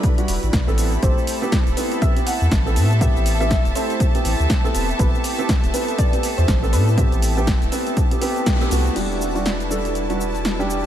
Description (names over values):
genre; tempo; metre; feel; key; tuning
deep house; 121 BPM; 4/4; swing 59% on 16ths; E minor; A4 = 439 Hz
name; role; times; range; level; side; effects
soft round pluck; melody; 0.0-8.4 s; B4 to F#5; -30 LUFS; left 1 dB; lush chorus, tape echo
warm analog pad; sustained chords; 0.0-10.9 s; G3 to B5; -30 LUFS; equal; wide subtle chorus, sidechain pumping
felt-muted upright piano; stabs; 0.0-10.8 s; G3 to C5; -25 LUFS; right 2 dB; sidechain pumping, low-pass filter, tape echo
electronic kick drum; drums; 0.0-8.6 s; none; -19 LUFS; equal; none
punchy analog drum machine; drums; 0.0-10.8 s; crash cymbal, hi-hat, shaker, snare drum; -27 LUFS; equal; none
bright symphonic violin section; texture; 0.0-10.9 s; A5 to B5; -34 LUFS; equal; sidechain pumping
clear studio string section; texture; 0.0-10.9 s; E4 to E5; -32 LUFS; right 2 dB; sidechain pumping
warm sub bass; bass; 0.3-10.9 s; E1 to A2; -21 LUFS; equal; sidechain pumping
room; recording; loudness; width
light reverb; none; -17 LUFS; side -11 dB against mid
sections
0.0-9.0 A section; 9.0-10.9 B section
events
band accent 8.5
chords
0.0 Em9